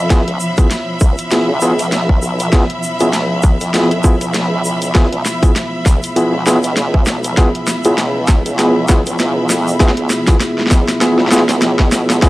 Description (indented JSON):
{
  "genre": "glitch hop",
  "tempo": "99 BPM",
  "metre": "4/4",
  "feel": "swing 57% on 16ths",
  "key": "unclear",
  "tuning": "A4 = 444 Hz",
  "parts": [
    { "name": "dark analog pad", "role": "sustained chords", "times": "0.0-12.3 s", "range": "B3 to C#5", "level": "-22 LUFS", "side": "equal", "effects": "lush chorus, sidechain pumping" },
    { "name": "formant-sweep wobble bass", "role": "bass", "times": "0.0-12.3 s", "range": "B1 to E#2", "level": "-20 LUFS", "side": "equal", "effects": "chorus, tube saturation, high-pass filter" },
    { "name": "bright studio string section", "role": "texture", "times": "0.0-12.3 s", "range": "E#3 to B5", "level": "-21 LUFS", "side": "equal", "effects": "sidechain pumping" },
    { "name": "overdriven tine electric piano", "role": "stabs", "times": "0.1-12.3 s", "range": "B3 to G#4", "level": "-17 LUFS", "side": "equal", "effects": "medium tremolo, sidechain pumping, low-pass filter, analog delay" },
    { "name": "drum and bass drum kit", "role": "drums", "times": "0.1-12.3 s", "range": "hi-hat, snare drum", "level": "-19 LUFS", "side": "equal", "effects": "overdrive, small room ambience" },
    { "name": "electronic kick drum", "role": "drums", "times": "0.1-12.3 s", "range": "none", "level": "-11 LUFS", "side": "equal", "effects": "overdrive, small room ambience" },
    { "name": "tube shaker", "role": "percussion", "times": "0.1-12.3 s", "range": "none", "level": "-26 LUFS", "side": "right 1 dB", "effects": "none" }
  ],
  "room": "digital ambience",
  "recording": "dry, gritty hardware recording, cassette tape",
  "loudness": "-12 LUFS",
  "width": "side -18 dB against mid",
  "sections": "0.0-12.3 A section",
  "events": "build-up 0.0-12.3; drum fill 0.0-12.3; filter sweep on analog synth pad 0.0-12.3",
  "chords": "0.0 C#7#9",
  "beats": "| 0.10 0.71 1.32 1.92 | 2.53 3.13 3.74 4.35 | 4.95 5.56 6.16 6.77 | 7.38 7.98 8.59 9.19 | 9.80 10.41 11.01 11.62 | 12.22"
}